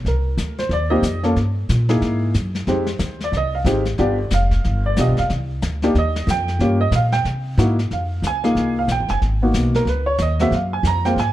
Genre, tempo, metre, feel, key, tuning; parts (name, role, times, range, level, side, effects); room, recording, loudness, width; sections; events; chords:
jazz piano trio; 183 BPM; 4/4; swing 61% on 8ths; C minor, F minor from 7.9 s; A4 = 442 Hz
upright bass; bass; 0.0-11.3 s; F1 to C3; -20 LUFS; equal
warm upright piano; melody; 0.1-11.3 s; Ab3 to Bb5; -20 LUFS; right 1 dB; plate reverb
vintage brush drum kit; drums; 0.1-11.3 s; brushed snare drum, hi-hat, kick drum, snare drum; -28 LUFS; left 3 dB
light reverb; dark, warm production; -17 LUFS; side -14 dB against mid
0.0-7.9 A section; 7.9-11.3 A section
upright piano solo 0.0-11.3
0.0 Cm11; 1.4 Gm; 2.0 F#13; 2.7 Fm9; 4.0 G7; 5.3 Cmadd9; 6.6 Gm7b5; 7.2 C7alt; 7.9 Fm7; 9.2 Abm9; 9.9 Dbsus2; 10.5 Gbmaj9